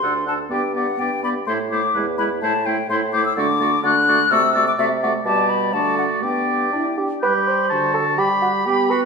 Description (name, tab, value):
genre	quick classical-period movement for wind quintet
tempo	126 BPM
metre	2/4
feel	straight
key	G major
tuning	A4 = 440 Hz
part	hollow concert flute	melody	0.0-9.1 s	E5 to F#6	-21 LUFS	left 7 dB	none
part	clear oboe	second line	0.0-9.1 s	B4 to B5	-24 LUFS	left 1 dB	none
part	bright clarinet	accompaniment	0.0-9.0 s	E4 to A4	-25 LUFS	right 8 dB	none
part	mellow French horn	accompaniment	0.0-9.1 s	D3 to E4	-28 LUFS	right 1 dB	none
part	mellow bassoon	bass	0.0-9.1 s	D2 to C5	-23 LUFS	right 3 dB	none
room	wet recital hall reverb, RT60 1.5 s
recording	minimal, uncompressed stereo recording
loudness	-17 LUFS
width	side -5 dB against mid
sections	0.0-7.2 A section; 7.2-9.1 A section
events	none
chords	0.0 D7; 0.5 G; 1.5 Am; 1.9 E; 2.4 Am; 3.4 D; 4.3 D7/C; 5.3 G/B; 5.7 D; 6.2 G; 7.7 D7; 8.2 G